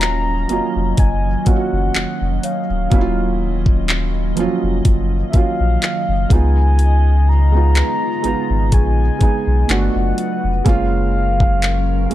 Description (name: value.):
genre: contemporary R&B.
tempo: 62 BPM.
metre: 4/4.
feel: swing 54% on 16ths.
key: Eb minor.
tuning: A4 = 440 Hz.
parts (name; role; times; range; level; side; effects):
mellow horn-like synth lead; melody; 0.0-12.1 s; Fb5 to Bb5; -23 LUFS; left 1 dB; chorus, digital delay.
felt-muted upright piano; accompaniment; 0.0-12.1 s; F3 to Ab4; -22 LUFS; right 5 dB; none.
glassy FM pad; sustained chords; 0.0-12.1 s; Db3 to Eb5; -25 LUFS; equal; ensemble chorus, built-in reverb, sidechain pumping.
warm sub bass; bass; 0.0-12.1 s; D1 to Db2; -17 LUFS; equal; none.
smooth R&B drum kit; drums; 0.0-12.1 s; handclaps, hi-hat, kick drum; -16 LUFS; equal; none.
worn celesta; texture; 0.0-10.1 s; Ab4 to Ab5; -35 LUFS; left 4 dB; none.
room: little or no reverb.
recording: dark, warm production.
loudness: -14 LUFS.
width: side -13 dB against mid.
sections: 0.0-12.1 A section.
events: none.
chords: 0.0 Ebm9; 6.3 Db9; 9.7 Gmaj7; 10.7 Gbmaj7.